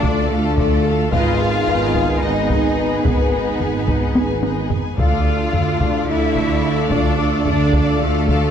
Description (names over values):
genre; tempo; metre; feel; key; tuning
cinematic, epic orchestral film score; 218 BPM (eighths); 7/8; straight; unclear; A4 = 439 Hz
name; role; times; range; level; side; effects
warm symphonic violin section; melody; 0.0-8.5 s; A4 to F5; -27 LUFS; left 4 dB; none
warm symphonic violin section; second line; 0.0-8.5 s; F4 to G#5; -28 LUFS; left 3 dB; none
rich symphonic viola section; accompaniment; 0.0-8.5 s; D#4 to B4; -27 LUFS; equal; none
dark French horn section; sustained chords; 0.0-8.5 s; B3 to B4; -27 LUFS; left 7 dB; none
dark trombone section; sustained chords; 0.0-8.5 s; D3 to A3; -27 LUFS; right 4 dB; none
rich studio string section; sustained chords; 0.0-8.5 s; A3 to D5; -27 LUFS; left 1 dB; none
mellow tuba; bass; 0.0-8.5 s; G#1 to D2; -25 LUFS; right 3 dB; none
rich symphonic cello section; bass; 0.0-8.5 s; A3 to F4; -23 LUFS; equal; none
warm symphonic double bass section; bass; 0.0-8.5 s; G#1 to D2; -24 LUFS; right 2 dB; none
taiko ensemble; drums; 0.0-8.5 s; none; -22 LUFS; equal; none
room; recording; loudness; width
moderate scoring stage reverb, RT60 1.6 s; dark, warm production; -15 LUFS; side -8 dB against mid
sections
0.0-8.5 A section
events
drum fill 4.2-5.0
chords
0.0 Dm; 1.1 G#m; 5.0 Dm